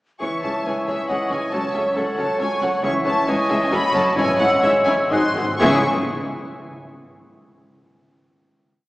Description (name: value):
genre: quick classical-period movement for symphony orchestra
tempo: 118-138 BPM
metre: 3/4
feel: rubato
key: C# minor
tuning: A4 = 440 Hz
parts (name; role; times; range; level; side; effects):
- clear studio violin section; melody; 0.2-5.9 s; E5 to C#6; -25 LUFS; left 1 dB; none
- bright clarinet; second line; 0.2-5.8 s; G#4 to E5; -25 LUFS; equal; none
- mellow flute section; second line; 0.2-5.9 s; G#5 to F#6; -28 LUFS; left 1 dB; none
- rich studio violin section; second line; 0.2-5.9 s; E4 to E5; -28 LUFS; left 1 dB; none
- warm oboe; second line; 0.2-5.8 s; C#5 to D#5; -26 LUFS; equal; none
- mellow bassoon; accompaniment; 0.2-5.8 s; E3 to G#3; -27 LUFS; right 1 dB; none
- rich studio viola section; accompaniment; 0.2-5.9 s; D#3 to E4; -29 LUFS; equal; none
- mellow French horn section; sustained chords; 0.2-5.8 s; E3 to E4; -29 LUFS; left 1 dB; none
- clear studio cello section; bass; 0.2-5.9 s; C#2 to C#3; -28 LUFS; equal; none
- rich studio double bass section; bass; 0.2-5.9 s; F#1 to C#2; -33 LUFS; right 1 dB; none
- timpani; percussion; 1.5-5.8 s; G#2 to C#3; -35 LUFS; equal; none
room: wet concert hall reverb, RT60 2.5 s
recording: heard from further back in the room, small speaker sound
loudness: -17 LUFS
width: side -18 dB against mid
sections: 0.2-5.6 A section; 5.6-7.0 final chord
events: slowing down 2.2-5.6; timpani fill 5.1-5.6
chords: 0.2 C#m; 1.5 F#m/C#; 2.8 C#m; 3.7 F#m; 4.2 C#m/G#; 5.1 G#7; 5.6 C#m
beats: | 0.21 0.66 1.09 | 1.53 1.97 2.41 | 2.85 3.29 3.72 | 4.17 4.63 5.10 | 5.59